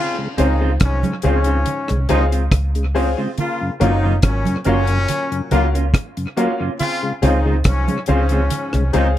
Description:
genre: roots reggae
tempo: 70 BPM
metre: 4/4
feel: straight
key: Db major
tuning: A4 = 440 Hz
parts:
  - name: mellow horn section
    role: second line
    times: 0.0-9.1 s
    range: Ab2 to F4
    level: -23 LUFS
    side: left 2 dB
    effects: dub echo
  - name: mellow tonewheel organ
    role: accompaniment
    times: 0.2-9.1 s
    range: Gb2 to F4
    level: -24 LUFS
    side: left 2 dB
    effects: chorus vibrato, slow rotary speaker
  - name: mellow electric guitar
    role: accompaniment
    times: 0.4-9.1 s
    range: Ab3 to F4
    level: -24 LUFS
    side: right 4 dB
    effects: analog chorus, dub echo
  - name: clear upright piano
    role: stabs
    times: 0.4-9.2 s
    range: Gb4 to F5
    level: -22 LUFS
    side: left 8 dB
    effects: none
  - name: vintage muted fingered electric bass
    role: bass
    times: 0.4-9.2 s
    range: Gb1 to Db2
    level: -18 LUFS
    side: equal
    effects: none
  - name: deep reggae drum kit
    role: drums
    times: 0.4-9.1 s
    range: hi-hat, kick drum, rim click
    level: -20 LUFS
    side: equal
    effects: dub echo
  - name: congas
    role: percussion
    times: 0.4-9.1 s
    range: none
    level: -24 LUFS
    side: right 5 dB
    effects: none
room: light reverb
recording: dark, warm production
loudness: -16 LUFS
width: side -12 dB against mid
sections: 0.0-9.2 A section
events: none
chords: 0.0 Dbmaj7; 3.4 Gbmaj7; 6.8 Dbmaj7

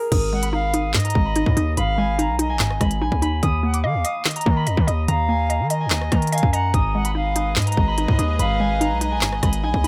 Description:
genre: hip hop, drill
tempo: 145 BPM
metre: 4/4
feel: half-time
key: unclear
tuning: A4 = 440 Hz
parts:
  - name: concert harp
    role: melody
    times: 0.0-9.9 s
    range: Ab4 to Eb6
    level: -28 LUFS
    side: equal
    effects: low-pass filter, tape echo
  - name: hollow square pluck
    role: accompaniment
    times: 0.1-9.9 s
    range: Ab2 to Eb5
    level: -28 LUFS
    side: equal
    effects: chorus, low-pass filter
  - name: distorted 808-style bass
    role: bass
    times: 0.1-9.9 s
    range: Ab1 to Eb3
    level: -25 LUFS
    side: equal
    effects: distortion
  - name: drill drum kit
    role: drums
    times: 0.1-9.9 s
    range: crash cymbal, handclaps, hi-hat, kick drum, rim click, snare drum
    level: -24 LUFS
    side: equal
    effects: none
  - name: bright reedy silver concert flute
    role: second line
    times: 0.3-9.6 s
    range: Eb5 to Gb5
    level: -30 LUFS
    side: equal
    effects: none
  - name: warm chamber string section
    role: sustained chords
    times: 6.7-9.9 s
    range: Ab3 to Eb5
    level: -34 LUFS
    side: equal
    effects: none
room: little or no reverb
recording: none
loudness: -21 LUFS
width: mono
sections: 0.1-9.9 A section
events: none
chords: 0.1 Abm; 3.4 Eb5; 6.7 Abm

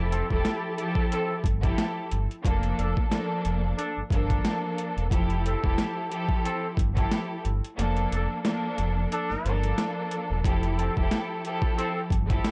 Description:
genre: hip hop, boom-bap hip-hop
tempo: 90 BPM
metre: 4/4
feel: swing 56% on 16ths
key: F major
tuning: A4 = 440 Hz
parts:
  - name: bright studio string section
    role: accompaniment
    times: 0.0-12.5 s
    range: F3 to A4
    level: -32 LUFS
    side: equal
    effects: cassette tape, high-pass filter, low-pass filter
  - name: sub bass with octave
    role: bass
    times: 0.0-12.4 s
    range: E1 to G1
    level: -30 LUFS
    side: equal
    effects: transformer saturation
  - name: dark trumpet section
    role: stabs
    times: 0.1-12.0 s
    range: C4 to A4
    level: -36 LUFS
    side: equal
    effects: high-pass filter, low-pass filter, tape echo
  - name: boom bap sampler-style drum kit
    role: drums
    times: 0.1-12.5 s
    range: hi-hat, kick drum, snare drum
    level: -29 LUFS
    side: equal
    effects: overdrive, vintage 12-bit sampler grit
room: digital ambience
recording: dry, gritty hardware recording, nothing above 10.3 kHz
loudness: -27 LUFS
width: mono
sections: 0.0-12.5 A section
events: kick muted 7.8-10.4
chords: 0.0 Fmaj9; 2.4 Bbmaj7/F; 5.1 Fmaj9; 7.8 Bbmaj7/F; 10.4 Fmaj9

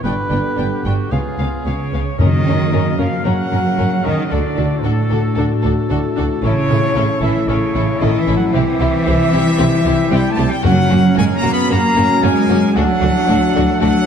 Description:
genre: cinematic, heroic adventure film score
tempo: 114 BPM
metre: 4/4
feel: straight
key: unclear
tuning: A4 = 440 Hz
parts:
  - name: rich symphonic violin section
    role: melody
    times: 0.0-13.9 s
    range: F#4 to G5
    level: -29 LUFS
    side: left 6 dB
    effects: none
  - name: clear oboe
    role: second line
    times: 0.0-14.1 s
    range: F#4 to B4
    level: -30 LUFS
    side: equal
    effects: none
  - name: warm symphonic violin section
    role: second line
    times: 0.0-13.9 s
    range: C#4 to F#4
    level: -29 LUFS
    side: left 4 dB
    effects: none
  - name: warm symphonic viola section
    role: accompaniment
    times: 0.0-13.9 s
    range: A3 to D4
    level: -26 LUFS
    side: left 1 dB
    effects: none
  - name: dark trombone section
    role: sustained chords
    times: 0.0-14.1 s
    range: A2 to B3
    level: -26 LUFS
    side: right 2 dB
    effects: none
  - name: bright trumpet section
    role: stabs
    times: 0.0-14.1 s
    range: E#4 to B5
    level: -22 LUFS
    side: left 1 dB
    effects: none
  - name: rich symphonic cello section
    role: bass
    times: 0.0-14.1 s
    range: C#2 to B3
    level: -19 LUFS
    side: right 2 dB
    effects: none
  - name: warm symphonic double bass section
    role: bass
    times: 0.1-13.9 s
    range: G1 to F#2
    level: -20 LUFS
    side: right 2 dB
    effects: none
  - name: mellow hollow small flute group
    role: second line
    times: 1.7-14.1 s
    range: A4 to B5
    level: -27 LUFS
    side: equal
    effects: none
  - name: mellow clarinet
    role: second line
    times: 2.2-14.1 s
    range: C#4 to F#4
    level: -24 LUFS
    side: left 4 dB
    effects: none
  - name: mellow French horn section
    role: sustained chords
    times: 2.2-14.1 s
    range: A3 to F#4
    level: -24 LUFS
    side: left 7 dB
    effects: none
  - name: timpani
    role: percussion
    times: 2.2-2.9, 10.6-11.4 s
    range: F#2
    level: -19 LUFS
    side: equal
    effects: none
room: wet scoring stage reverb, RT60 1.8 s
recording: dark, warm production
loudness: -13 LUFS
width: side -7 dB against mid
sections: 0.0-2.2 A section; 2.2-14.1 B section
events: none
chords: 0.0 G; 1.1 C#7; 2.2 F#; 4.3 D; 6.4 A; 8.5 C; 10.6 F#; 12.8 D

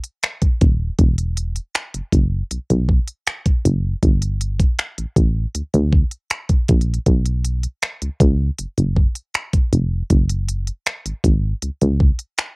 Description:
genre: contemporary R&B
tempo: 79 BPM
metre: 4/4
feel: straight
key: B minor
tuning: A4 = 440 Hz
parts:
  - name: smooth R&B drum kit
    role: drums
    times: 0.0-12.6 s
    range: finger snaps, hi-hat, kick drum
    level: -17 LUFS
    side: equal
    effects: none
  - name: solid FM bass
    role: bass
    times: 0.6-12.1 s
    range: D#1 to D2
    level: -18 LUFS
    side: equal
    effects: none
room: little or no reverb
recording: home recording on cassette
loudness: -17 LUFS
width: side -36 dB against mid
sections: 0.0-12.6 A section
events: none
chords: none

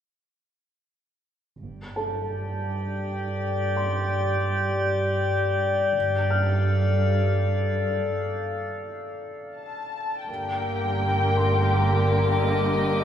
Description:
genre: cinematic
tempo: 83 BPM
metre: 3/4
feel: straight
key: G minor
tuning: A4 = 438 Hz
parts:
  - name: drifting glass-harmonics texture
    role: sustained chords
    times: 2.6-13.0 s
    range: G4 to D6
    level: -27 LUFS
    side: left 3 dB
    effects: chorus, built-in reverb
  - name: muted studio cello section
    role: bass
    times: 1.6-13.0 s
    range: G2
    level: -27 LUFS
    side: right 2 dB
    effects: none
  - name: muted studio double bass section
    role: bass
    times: 1.6-2.3, 5.9-6.6, 10.3-13.0 s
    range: G1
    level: -27 LUFS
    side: right 2 dB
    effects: none
  - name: warm baby grand piano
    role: texture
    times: 2.0-13.0 s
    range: A4 to F6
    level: -36 LUFS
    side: equal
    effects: none
  - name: muted studio violin section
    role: melody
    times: 9.6-13.0 s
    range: Eb5 to A5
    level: -28 LUFS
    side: left 1 dB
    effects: none
  - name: muted studio violin section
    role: second line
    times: 10.3-13.0 s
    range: G4 to Bb4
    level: -27 LUFS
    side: left 3 dB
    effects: none
  - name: muted studio viola section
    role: accompaniment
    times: 10.3-13.0 s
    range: D3 to Bb3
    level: -29 LUFS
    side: equal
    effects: none
room: wet recital hall reverb, RT60 1.6 s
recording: recorded in a church or concert hall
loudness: -22 LUFS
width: side -9 dB against mid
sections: 1.6-10.3 A section; 10.3-13.0 B section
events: break 8.1-10.3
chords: 1.6 G5; 5.9 Dm/G; 10.3 Gm

